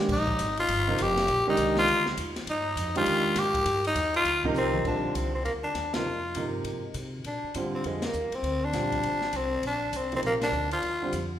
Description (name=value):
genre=modal jazz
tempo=201 BPM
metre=4/4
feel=swing 63% on 8ths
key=Bb mixolydian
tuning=A4 = 439 Hz
part: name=warm concert grand piano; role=accompaniment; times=0.0-11.1 s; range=C3 to G4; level=-31 LUFS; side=right 2 dB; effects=none
part: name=growling tenor saxophone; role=melody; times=0.1-11.3 s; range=Ab3 to G4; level=-27 LUFS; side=left 1 dB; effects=none
part: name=upright bass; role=bass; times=0.1-11.4 s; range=F1 to C3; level=-35 LUFS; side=equal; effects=none
part: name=compact cocktail drum kit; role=drums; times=0.1-11.2 s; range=crash cymbal, hi-hat, kick drum, ride cymbal, snare drum, toms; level=-37 LUFS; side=left 2 dB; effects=none
room=wet recital hall reverb, RT60 1.4 s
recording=recorded in a church or concert hall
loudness=-25 LUFS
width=side -11 dB against mid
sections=0.0-4.9 A section; 4.9-11.4 B section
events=tenor saxophone solo 0.0-4.9; drum fill 4.6; band accent 5.9, 8.0, 10.4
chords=0.0 Bb9; 9.6 Ebsus2/Bb